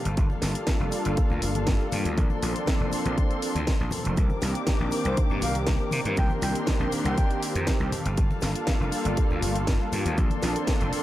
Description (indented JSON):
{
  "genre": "nu-disco, nu disco",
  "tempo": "120 BPM",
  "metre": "4/4",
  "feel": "straight",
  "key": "C dorian",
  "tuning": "A4 = 441 Hz",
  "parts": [
    { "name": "muted studio string section", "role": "sustained chords", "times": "0.0-11.0 s", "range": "A4 to D6", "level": "-35 LUFS", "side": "left 2 dB", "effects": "sidechain pumping" },
    { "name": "gritty slap bass", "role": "bass", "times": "0.1-11.0 s", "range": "F1 to C3", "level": "-28 LUFS", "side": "equal", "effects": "overdrive" },
    { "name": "house drum kit", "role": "drums", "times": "0.1-11.0 s", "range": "hi-hat, snare drum", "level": "-32 LUFS", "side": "equal", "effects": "none" },
    { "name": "cabasa, congas and bongos", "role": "percussion", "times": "0.1-11.0 s", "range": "none", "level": "-37 LUFS", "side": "left 4 dB", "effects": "none" },
    { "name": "warm analog pad", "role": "accompaniment", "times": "0.2-11.0 s", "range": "Eb3 to A4", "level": "-30 LUFS", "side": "equal", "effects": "chorus, sidechain pumping, tape echo" },
    { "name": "electronic kick drum", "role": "drums", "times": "0.2-10.8 s", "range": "none", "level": "-25 LUFS", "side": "equal", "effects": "none" },
    { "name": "breathy mellow silver concert flute", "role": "melody", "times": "5.1-7.4 s", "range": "C5 to G5", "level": "-35 LUFS", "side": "equal", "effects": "vintage 12-bit sampler grit, tape echo" }
  ],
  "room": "little or no reverb",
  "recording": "dry, gritty hardware recording",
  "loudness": "-23 LUFS",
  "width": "side -14 dB against mid",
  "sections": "0.0-11.0 A section",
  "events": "none",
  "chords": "0.0 Gm9; 2.2 Bbmaj9; 4.2 Cm9; 7.9 Gm9; 10.2 Bbmaj9",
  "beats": "| 0.17 0.67 1.17 1.67 | 2.17 2.67 3.17 3.67 | 4.17 4.67 5.17 5.67 | 6.17 6.67 7.17 7.67 | 8.17 8.67 9.17 9.67 | 10.17 10.67"
}